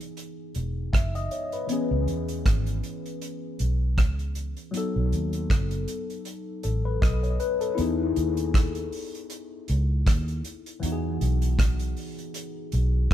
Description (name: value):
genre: lovers rock reggae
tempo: 79 BPM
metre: 4/4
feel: swing 56% on 16ths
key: E major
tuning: A4 = 440 Hz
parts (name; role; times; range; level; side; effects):
- tine electric piano; accompaniment; 0.0-13.1 s; E3 to E5; -30 LUFS; left 4 dB; phaser, tape echo
- damped 70s drum kit; drums; 0.0-13.1 s; hi-hat, kick drum, rim click; -25 LUFS; right 1 dB; none
- vintage muted fingered electric bass; bass; 0.6-13.1 s; E1 to E2; -26 LUFS; equal; none
room: light reverb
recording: band playing live in one room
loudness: -24 LUFS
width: side -11 dB against mid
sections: 0.0-7.8 A section; 7.8-13.1 B section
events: none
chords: 0.0 Emaj7; 1.7 C#m7; 4.7 B7; 7.8 Emaj7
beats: 0.17 0.93 | 1.69 2.45 3.21 3.98 | 4.74 5.50 6.26 7.02 | 7.78 8.54 9.30 10.07 | 10.83 11.59 12.35 13.11